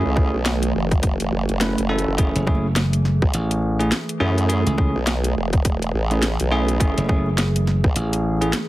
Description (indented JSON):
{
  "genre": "glitch hop",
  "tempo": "104 BPM",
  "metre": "4/4",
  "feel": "swing 60% on 16ths",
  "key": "F# minor",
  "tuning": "A4 = 440 Hz",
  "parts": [
    { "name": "warbly tape-like pad", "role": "sustained chords", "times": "0.0-8.7 s", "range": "E3 to G#4", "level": "-28 LUFS", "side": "right 2 dB", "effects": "chorus, built-in reverb, phaser, sidechain pumping" },
    { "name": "bell-like tine electric piano", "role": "stabs", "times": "0.0-8.6 s", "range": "A3 to B4", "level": "-24 LUFS", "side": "right 1 dB", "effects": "vintage 12-bit sampler grit, sidechain pumping, tape echo" },
    { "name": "formant-sweep wobble bass", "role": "bass", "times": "0.0-7.9 s", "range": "E1 to F#2", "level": "-22 LUFS", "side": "equal", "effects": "chorus, overdrive" },
    { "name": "electronic kick drum", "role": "drums", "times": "0.2-7.9 s", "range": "none", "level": "-19 LUFS", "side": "equal", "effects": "overdrive" },
    { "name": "drum and bass drum kit", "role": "drums", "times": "0.5-8.7 s", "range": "hi-hat, snare drum", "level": "-24 LUFS", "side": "equal", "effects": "overdrive" },
    { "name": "slap bass", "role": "bass", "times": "2.4-8.5 s", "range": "F#1 to C#2", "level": "-20 LUFS", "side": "equal", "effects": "none" }
  ],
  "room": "light reverb",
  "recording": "heavily compressed radio sound, vinyl crackle",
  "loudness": "-18 LUFS",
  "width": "side -16 dB against mid",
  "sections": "0.0-8.7 A section",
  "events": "none",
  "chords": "0.0 F#m7",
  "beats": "0.46 1.03 1.61 | 2.19 2.76 3.34 3.92 | 4.49 5.07 5.65 6.22 | 6.80 7.38 7.96 8.53"
}